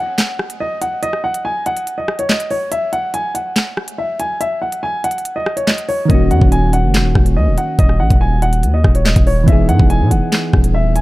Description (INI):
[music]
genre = hip hop, drill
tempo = 142 BPM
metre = 4/4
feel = half-time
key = Eb phrygian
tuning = A4 = 441 Hz
[part]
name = dark baby grand piano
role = melody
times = 0.0-11.0 s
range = Db5 to Ab5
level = -19 LUFS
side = equal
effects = none
[part]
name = drill drum kit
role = drums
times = 0.2-11.0 s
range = handclaps, hi-hat, kick drum, rim click, snare drum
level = -15 LUFS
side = equal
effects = none
[part]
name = soft electric-piano-like synth keys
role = accompaniment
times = 6.1-11.0 s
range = Eb3 to G#4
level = -19 LUFS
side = right 1 dB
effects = chorus
[part]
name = distorted 808-style bass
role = bass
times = 6.1-11.0 s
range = Eb1 to B2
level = -14 LUFS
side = equal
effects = distortion
[sound]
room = little or no reverb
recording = dark, warm production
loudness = -13 LUFS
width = side -18 dB against mid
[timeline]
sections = 0.0-11.0 A section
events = break 0.0-6.1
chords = 0.0 N.C.; 6.1 Ebm7; 9.5 Emaj7